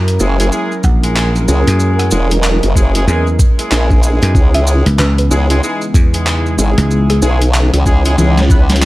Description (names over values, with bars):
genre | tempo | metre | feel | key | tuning
glitch hop | 94 BPM | 4/4 | swing 61% on 16ths | C# dorian | A4 = 440 Hz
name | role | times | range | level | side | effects
warbly tape-like pad | sustained chords | 0.0-8.9 s | C#3 to D#5 | -21 LUFS | right 1 dB | chorus, built-in reverb, sidechain pumping
dry thumbed slap bass | bass | 0.0-7.2 s | A#1 to F#2 | -13 LUFS | equal | none
boom bap sampler-style drum kit | drums | 0.1-8.9 s | handclaps, hi-hat, rim click, snare drum, toms | -18 LUFS | left 1 dB | none
maracas | percussion | 0.1-8.9 s | none | -25 LUFS | right 2 dB | none
mellow horn section | stabs | 0.2-8.6 s | G#3 to B4 | -20 LUFS | equal | sidechain pumping, tape echo
formant-sweep wobble bass | bass | 0.2-8.9 s | E1 to C#2 | -12 LUFS | equal | chorus, tube saturation
woody wave-folded pluck | melody | 0.8-7.3 s | G#4 to F#5 | -24 LUFS | left 1 dB | chorus, tape echo
electronic kick drum | drums | 0.8-8.7 s | none | -10 LUFS | equal | none
room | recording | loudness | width
little or no reverb | vinyl crackle | -10 LUFS | side -18 dB against mid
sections
0.0-8.9 A section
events
drum fill 8.2-8.9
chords
0.0 F#7; 4.4 C#m7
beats
0.52 1.16 | 1.80 2.44 3.08 3.71 | 4.35 4.99 5.63 6.27 | 6.91 7.54 8.18 8.82